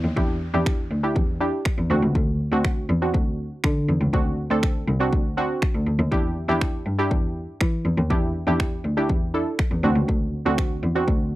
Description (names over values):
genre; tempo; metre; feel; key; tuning
dance-pop; 121 BPM; 4/4; straight; E minor; A4 = 440 Hz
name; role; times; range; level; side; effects
bright cello; bass; 0.0-11.2 s; C2 to E3; -24 LUFS; equal; sidechain pumping
downlifter; sound effects; 0.0-2.1 s; none; -47 LUFS; equal; none
glassy wavetable pluck; accompaniment; 0.2-11.4 s; C4 to A4; -25 LUFS; right 1 dB; chorus, sidechain pumping
pop drum kit; drums; 0.2-11.2 s; finger snaps, kick drum; -23 LUFS; equal; none
room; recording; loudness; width
little or no reverb; dry, close 1970s-style studio recording; -20 LUFS; side -16 dB against mid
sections
0.0-11.4 A section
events
none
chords
0.0 Em7; 1.9 D7; 6.1 Em7; 9.8 D7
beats
| 0.17 0.66 1.16 1.66 | 2.15 2.65 3.14 3.64 | 4.13 4.63 5.13 5.62 | 6.12 6.61 7.11 7.61 | 8.10 8.60 9.09 9.59 | 10.09 10.58 11.08